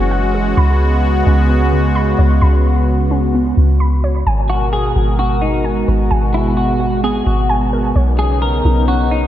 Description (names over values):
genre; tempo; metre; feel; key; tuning
hip hop; 130 BPM; 4/4; half-time; G# minor; A4 = 440 Hz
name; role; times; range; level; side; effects
warm analog pad; sustained chords; 0.0-9.3 s; B2 to A#4; -18 LUFS; equal; chorus
soft round pluck; arpeggios; 0.0-9.3 s; C#3 to B5; -24 LUFS; right 2 dB; chorus, phaser, diffuse ambient delay
soft 808-style bass; bass; 0.0-9.3 s; F#1 to C#2; -15 LUFS; equal; none
clean electric guitar; melody; 4.5-9.3 s; D#4 to A#4; -20 LUFS; left 2 dB; analog chorus, diffuse ambient delay
room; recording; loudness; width
moderate lush hall reverb, RT60 2.8 s; dreamy mix soaked in reverb; -12 LUFS; side -12 dB against mid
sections
0.0-4.3 A section; 4.3-9.3 B section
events
none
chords
0.0 F#9; 0.6 C#7sus4; 4.3 G#m9; 8.0 Bmaj9